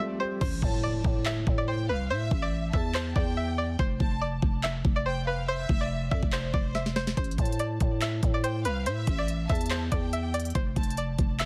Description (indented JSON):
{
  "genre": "hip hop, trap",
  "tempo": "142 BPM",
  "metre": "4/4",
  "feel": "half-time",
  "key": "A minor",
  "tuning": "A4 = 440 Hz",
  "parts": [
    { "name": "string-like resonator pluck", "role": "melody", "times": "0.0-11.5 s", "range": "B4 to E5", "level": "-36 LUFS", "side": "equal", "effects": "chorus, low-pass filter" },
    { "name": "swell and impact", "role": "sound effects", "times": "0.0-2.1 s", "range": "none", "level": "-43 LUFS", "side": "equal", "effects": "none" },
    { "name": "growling 808-style bass", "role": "bass", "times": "0.4-11.5 s", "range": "F1 to A2", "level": "-33 LUFS", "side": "equal", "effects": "none" },
    { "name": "trap drum kit", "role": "drums", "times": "0.4-11.5 s", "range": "crash cymbal, handclaps, hi-hat, kick drum, snare drum", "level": "-30 LUFS", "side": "equal", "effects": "overdrive" },
    { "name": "warm studio violin section", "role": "second line", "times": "0.6-11.0 s", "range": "C5 to A5", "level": "-42 LUFS", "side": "equal", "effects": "tape echo" }
  ],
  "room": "digital ambience",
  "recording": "dense, heavily limited modern master, vinyl crackle",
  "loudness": "-28 LUFS",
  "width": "mono",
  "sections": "0.4-11.5 A section",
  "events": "hi-hats muted 0.4-7.2; impact 0.4-2.1; drum fill 6.7-7.2",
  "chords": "0.4 Am; 3.8 F5; 7.2 Am; 10.6 F5"
}